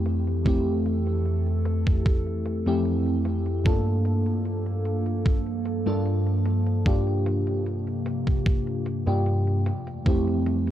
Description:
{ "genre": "vaporwave", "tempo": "75 BPM", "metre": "4/4", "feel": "straight", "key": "F major", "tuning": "A4 = 439 Hz", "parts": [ { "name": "mellow FM electric piano", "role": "accompaniment", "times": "0.0-10.7 s", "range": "F2 to A4", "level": "-24 LUFS", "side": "equal", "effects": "phaser, lush chorus, analog delay" }, { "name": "warbly tape-like pad", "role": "sustained chords", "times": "0.0-10.7 s", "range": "F2 to A4", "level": "-32 LUFS", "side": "right 1 dB", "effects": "chorus, built-in reverb" }, { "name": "electronic hi-hat", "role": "drums", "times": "0.1-10.7 s", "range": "none", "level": "-47 LUFS", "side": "right 1 dB", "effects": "overdrive, low-pass filter on hats, vintage 12-bit sampler grit, studio reverb" }, { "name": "electronic kick drum", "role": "drums", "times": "0.5-10.2 s", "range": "none", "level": "-22 LUFS", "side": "equal", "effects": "overdrive, vintage 12-bit sampler grit, studio reverb" } ], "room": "light reverb", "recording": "cassette tape", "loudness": "-22 LUFS", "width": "side -12 dB against mid", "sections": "0.0-10.7 A section", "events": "none", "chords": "0.0 Fmaj9; 3.7 Gm9; 6.9 C7sus4/G; 9.7 Fmaj9" }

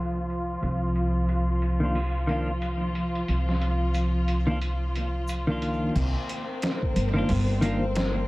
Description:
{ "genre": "trip hop", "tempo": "90 BPM", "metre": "4/4", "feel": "swing 60% on 16ths", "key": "C minor", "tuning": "A4 = 437 Hz", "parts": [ { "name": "warm studio string section", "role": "sustained chords", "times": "0.0-8.3 s", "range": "F3 to F4", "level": "-30 LUFS", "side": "equal", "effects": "none" }, { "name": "upright bass", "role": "bass", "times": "0.0-8.3 s", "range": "G1 to C2", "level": "-26 LUFS", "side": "equal", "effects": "none" }, { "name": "trip hop sampler-style drum kit", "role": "drums", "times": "0.3-8.1 s", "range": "crash cymbal, hi-hat, kick drum, snare drum", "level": "-33 LUFS", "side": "equal", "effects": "overdrive, low-pass filter on hats, low-pass filter on snare, low-pass filter on kick, low-pass filter on cymbals, low-pass filter on room, dub echo" }, { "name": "tube shaker and triangle", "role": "percussion", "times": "1.3-5.4 s", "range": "none", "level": "-52 LUFS", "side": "left 3 dB", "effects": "dub echo" }, { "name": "clean electric guitar", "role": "accompaniment", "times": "1.8-7.8 s", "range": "Eb3 to F4", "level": "-29 LUFS", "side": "equal", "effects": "harmonic tremolo, low-pass filter, tape echo" }, { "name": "flickering grainy texture", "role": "texture", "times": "6.2-8.3 s", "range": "Bb3 to Bb4", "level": "-36 LUFS", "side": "left 2 dB", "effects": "built-in reverb" } ], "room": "digital ambience", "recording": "echo-heavy mix, vinyl crackle, low-pass filter", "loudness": "-24 LUFS", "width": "side -20 dB against mid", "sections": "0.0-6.0 A section; 6.0-8.3 B section", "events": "filter sweep on clean electric guitar 0.0-6.0; filter sweep 0.0-6.0", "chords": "0.0 Cm11" }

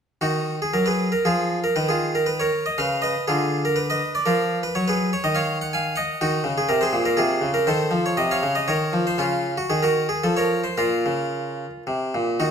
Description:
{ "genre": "classical, baroque-style suite movement for harpsichord", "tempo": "108-125 BPM", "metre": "3/4", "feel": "rubato", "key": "Eb minor, Bb minor from 6.2 s", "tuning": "A4 = 440 Hz", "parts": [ { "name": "harpsichord", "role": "solo", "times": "0.2-12.5 s", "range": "Bb2 to Ab5", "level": "-20 LUFS", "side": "equal", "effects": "none" } ], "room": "wet recital hall reverb, RT60 1.3 s", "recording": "none", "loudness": "-20 LUFS", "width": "side -7 dB against mid", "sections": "0.2-12.4 A section", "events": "none", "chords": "0.2 Ebm; 1.8 Db13; 3.3 Ddim7; 4.8 Ebm; 6.2 Bbm11; 7.7 F7; 9.2 N.C.; 9.7 Ebm; 10.2 Fadd11; 10.8 Bbm" }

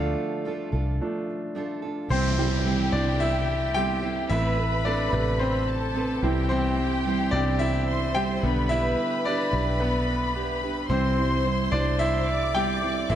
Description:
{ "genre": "piano-driven pop", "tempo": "109 BPM", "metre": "4/4", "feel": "swing 56% on 16ths", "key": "C major", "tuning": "A4 = 440 Hz", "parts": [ { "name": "clear concert grand piano", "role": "accompaniment", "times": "0.0-13.2 s", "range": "C3 to G5", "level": "-27 LUFS", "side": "equal", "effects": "none" }, { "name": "fingerpicked steel-string acoustic guitar", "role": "riff", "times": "0.0-13.2 s", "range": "A2 to C5", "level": "-30 LUFS", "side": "right 4 dB", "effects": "none" }, { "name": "vintage muted fingered electric bass", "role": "bass", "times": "0.0-13.2 s", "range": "A1 to D2", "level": "-27 LUFS", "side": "equal", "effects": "none" }, { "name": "warm symphonic violin section", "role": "second line", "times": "2.1-13.2 s", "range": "G4 to D6", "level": "-30 LUFS", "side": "left 2 dB", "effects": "none" }, { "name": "downlifter", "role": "sound effects", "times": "2.1-6.5 s", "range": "none", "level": "-35 LUFS", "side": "equal", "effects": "none" } ], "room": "moderate lush hall reverb, RT60 2.0 s", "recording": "none", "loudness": "-23 LUFS", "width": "side -10 dB against mid", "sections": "0.0-2.1 A section; 2.1-13.2 B section", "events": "grand piano solo 0.0-2.1, 2.1-13.2; break 1.0-2.1", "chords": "0.0 Dm; 2.1 C; 4.3 Amadd9; 6.2 C; 8.4 G/B; 10.9 C" }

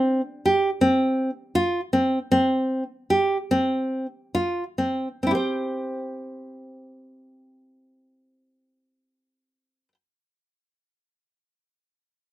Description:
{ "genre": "contemporary instrumental, contemporary", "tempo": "132-167 BPM (eighths)", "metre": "7/8", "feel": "straight", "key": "unclear", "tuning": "A4 = 440 Hz", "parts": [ { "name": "nylon-string guitar", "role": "arpeggios", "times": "0.0-9.9 s", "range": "C4 to C5", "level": "-21 LUFS", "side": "equal", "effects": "none" } ], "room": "light reverb", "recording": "close, detailed microphones", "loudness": "-21 LUFS", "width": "side -15 dB against mid", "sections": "0.0-5.2 A section; 5.2-8.4 B section", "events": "slowing down 0.0-5.2", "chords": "0.0 N.C.; 5.2 C5" }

